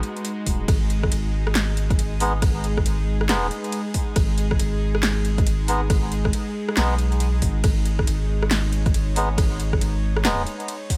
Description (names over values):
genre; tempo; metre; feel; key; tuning
deep dubstep; 138 BPM; 4/4; swing 62% on 16ths, half-time; G# minor; A4 = 440 Hz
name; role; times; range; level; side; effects
bowed-like drone; sustained chords; 0.0-11.0 s; G#3 to C#5; -33 LUFS; equal; built-in reverb
deep house drum kit; drums; 0.0-11.0 s; handclaps, hi-hat, ride cymbal, rim click, snare drum; -30 LUFS; equal; overdrive, small room ambience
soft dub sub bass; bass; 0.5-10.5 s; D#1 to B1; -25 LUFS; equal; none
electronic kick drum; drums; 0.5-11.0 s; none; -25 LUFS; equal; overdrive, small room ambience
melodica; stabs; 2.2-10.4 s; G#3 to D#4; -30 LUFS; equal; dub echo
room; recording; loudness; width
light reverb, digital ambience; none; -22 LUFS; mono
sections
0.0-11.0 A section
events
none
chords
0.0 G#m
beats
0.25 | 0.68 1.12 1.55 1.99 | 2.42 2.86 3.29 3.73 | 4.16 4.60 5.03 5.46 | 5.90 6.33 6.77 7.20 | 7.64 8.07 8.51 8.94 | 9.38 9.81 10.25 10.68